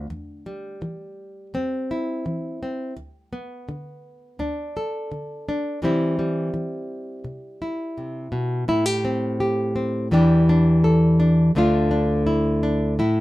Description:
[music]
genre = folk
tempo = 84 BPM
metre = 4/4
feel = straight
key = unclear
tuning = A4 = 439 Hz
[part]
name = nylon-string guitar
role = solo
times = 0.0-13.2 s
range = D2 to A4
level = -20 LUFS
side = equal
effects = none
[sound]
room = moderate studio reverb, RT60 0.5 s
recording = minimal, uncompressed stereo recording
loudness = -19 LUFS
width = side -17 dB against mid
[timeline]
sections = 0.0-8.7 A section; 8.7-13.2 B section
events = none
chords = 0.1 C/E; 3.0 G/D; 5.8 C; 8.7 Am7; 10.1 Em7; 11.5 Dm

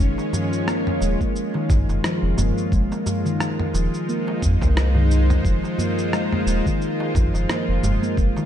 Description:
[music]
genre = organic downtempo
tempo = 88 BPM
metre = 4/4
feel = swing 57% on 16ths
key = F minor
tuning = A4 = 440 Hz
[part]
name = bowed-like drone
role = sustained chords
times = 0.0-8.5 s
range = Ab3 to Db5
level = -26 LUFS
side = left 1 dB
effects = built-in reverb, sidechain pumping
[part]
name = round analog bass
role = bass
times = 0.0-8.3 s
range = Eb1 to F2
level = -20 LUFS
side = equal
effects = none
[part]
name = dusty soul sampler-style drum kit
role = drums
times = 0.0-8.5 s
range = rim click, shaker, toms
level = -28 LUFS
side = equal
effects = none
[part]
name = darbuka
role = percussion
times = 0.2-8.5 s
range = none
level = -30 LUFS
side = right 1 dB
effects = none
[part]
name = handpan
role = arpeggios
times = 0.3-8.5 s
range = Eb3 to Bb3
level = -25 LUFS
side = left 1 dB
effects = ping-pong delay
[part]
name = electronic kick drum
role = drums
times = 1.2-8.3 s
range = none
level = -22 LUFS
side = equal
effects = none
[sound]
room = light reverb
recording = dark, warm production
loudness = -19 LUFS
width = side -10 dB against mid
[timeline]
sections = 0.0-8.5 A section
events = none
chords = 0.0 Db; 2.7 Fm7

